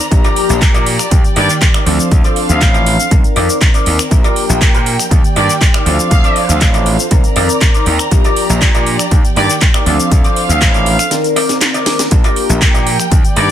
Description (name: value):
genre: filtered disco house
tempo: 120 BPM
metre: 4/4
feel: straight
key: Bb major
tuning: A4 = 440 Hz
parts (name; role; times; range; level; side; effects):
- funky polysynth comp; accompaniment; 0.0-13.5 s; Eb3 to D5; -19 LUFS; left 1 dB; chorus, phaser, sidechain pumping
- muted studio violin section; sustained chords; 0.0-13.5 s; D4 to Bb5; -22 LUFS; right 1 dB; sidechain pumping
- house drum kit; drums; 0.0-13.5 s; cabasa, finger snaps, handclaps, hi-hat, snare drum; -17 LUFS; equal; sidechain pumping on hats, sidechain pumping on cymbals, sidechain pumping on perc
- gritty slap bass; bass; 0.1-13.5 s; A1 to Bb2; -16 LUFS; equal; overdrive, sidechain pumping
- electronic kick drum; drums; 0.1-13.2 s; none; -11 LUFS; equal; none
- electric guitar with an envelope filter; riff; 0.2-13.5 s; Eb4 to G5; -19 LUFS; equal; lush chorus, sidechain pumping
- bright trumpet section; melody; 1.4-13.5 s; D5 to F5; -20 LUFS; equal; sidechain pumping
room: little or no reverb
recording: none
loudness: -9 LUFS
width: side -10 dB against mid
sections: 0.0-13.5 A section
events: clean electric guitar fill 7.4-8.1; drum fill 11.1-12.1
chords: 0.1 Bb6; 1.1 Ebmaj7; 1.9 Dm7; 3.1 Cm9; 4.1 Bb6; 5.1 Ebmaj7; 5.9 Dm7; 7.1 Cm9; 8.1 Bb6; 9.1 Ebmaj7; 9.9 Dm7; 11.1 Cm9; 12.1 Bb6